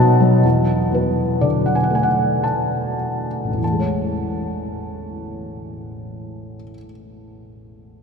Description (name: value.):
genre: classical, lyrical solo piano.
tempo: 44-63 BPM.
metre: 3/4.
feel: rubato.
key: A major.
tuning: A4 = 440 Hz.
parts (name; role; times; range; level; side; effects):
felt-muted upright piano; solo; 0.0-8.0 s; A1 to A5; -18 LUFS; equal; none.
room: wet cathedral reverb, RT60 6.7 s.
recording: in a vast, echoing space.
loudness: -17 LUFS.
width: side -6 dB against mid.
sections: 0.4-3.6 A section; 3.6-7.4 B section.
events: felt piano fill 0.0-0.4; slowing down 0.0-3.6.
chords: 0.4 E7sus4; 3.6 Amaj7.